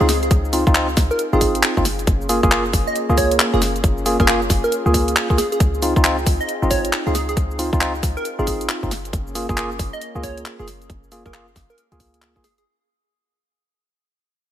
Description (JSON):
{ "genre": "UK garage, two-step garage", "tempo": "136 BPM", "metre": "4/4", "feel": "swing 63% on 16ths", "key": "unclear", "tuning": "A4 = 441 Hz", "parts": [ { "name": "plucky unison lead", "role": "melody", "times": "0.0-12.6 s", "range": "Ab4 to Eb5", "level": "-25 LUFS", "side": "right 1 dB", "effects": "dub echo" }, { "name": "warm analog pad", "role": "sustained chords", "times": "0.0-12.6 s", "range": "Bb3 to Ab4", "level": "-30 LUFS", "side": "left 2 dB", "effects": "chorus, sidechain pumping" }, { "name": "bright tine electric piano", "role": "stabs", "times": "0.0-12.4 s", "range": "Bb3 to Ab4", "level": "-22 LUFS", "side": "equal", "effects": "dub echo" }, { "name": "short 808-style bass", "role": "bass", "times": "0.0-12.6 s", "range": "Gb1 to Db2", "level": "-23 LUFS", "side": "equal", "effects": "tube saturation" }, { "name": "garage drum kit", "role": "drums", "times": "0.0-12.6 s", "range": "handclaps, hi-hat, shaker, snare drum", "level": "-22 LUFS", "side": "equal", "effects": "none" }, { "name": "electronic kick drum", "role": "drums", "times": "0.3-12.4 s", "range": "none", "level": "-20 LUFS", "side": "equal", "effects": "none" } ], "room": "light reverb", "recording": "none", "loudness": "-16 LUFS", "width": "side -11 dB against mid", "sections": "0.0-12.7 A section", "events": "drop 0.0-12.7; fade-out 5.6-12.7", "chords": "0.0 Gbmaj9; 5.6 Dbmaj9; 8.9 Gbmaj9" }